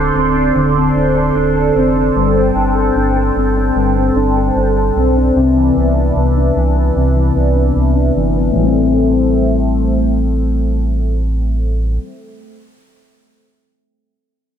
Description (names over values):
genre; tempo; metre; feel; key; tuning
dream pop; 75 BPM; 4/4; straight; A minor; A4 = 439 Hz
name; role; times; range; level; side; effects
phased analog pad; sustained chords; 0.0-12.0 s; A3 to C6; -19 LUFS; right 3 dB; phaser, chorus, low-pass filter
mellow electric guitar; arpeggios; 0.0-12.2 s; G2 to A4; -15 LUFS; left 3 dB; analog chorus, low-pass filter, digital delay
sub bass with octave; bass; 0.0-12.0 s; D1 to C2; -16 LUFS; right 1 dB; none
room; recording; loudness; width
moderate plate reverb, RT60 3.1 s; none; -12 LUFS; side -9 dB against mid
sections
0.0-8.6 A section; 8.6-11.8 B section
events
filter sweep 0.0-8.6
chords
0.0 Dm7; 2.2 Gsus24; 5.4 Cmaj9; 8.6 Am7